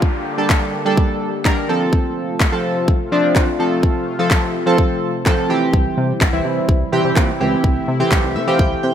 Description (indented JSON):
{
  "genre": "dance-pop",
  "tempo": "126 BPM",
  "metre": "4/4",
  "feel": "straight",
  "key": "unclear",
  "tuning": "A4 = 440 Hz",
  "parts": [
    { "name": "chorused retro synth keys", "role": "accompaniment", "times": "0.0-8.9 s", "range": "E3 to G5", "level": "-18 LUFS", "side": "right 1 dB", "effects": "none" },
    { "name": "sweeping resonant pad", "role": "sustained chords", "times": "0.0-8.9 s", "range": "C3 to G4", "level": "-26 LUFS", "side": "left 2 dB", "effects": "chorus, sidechain pumping" },
    { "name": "pop drum kit", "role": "drums", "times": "0.0-8.7 s", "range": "handclaps, kick drum", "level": "-17 LUFS", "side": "equal", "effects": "none" },
    { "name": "downlifter", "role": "sound effects", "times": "0.0-1.9 s", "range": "none", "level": "-34 LUFS", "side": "equal", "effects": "none" },
    { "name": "chorused synth bass", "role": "bass", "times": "5.7-8.9 s", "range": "C2 to C3", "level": "-22 LUFS", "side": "equal", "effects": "sidechain pumping" }
  ],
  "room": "moderate lush hall reverb, RT60 1.9 s, digital ambience",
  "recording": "rough home demo mix",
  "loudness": "-15 LUFS",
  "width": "side -9 dB against mid",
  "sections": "0.0-8.9 A section",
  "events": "synth keys fill 8.1-8.9",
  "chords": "0.0 Gm; 1.7 F; 5.5 C"
}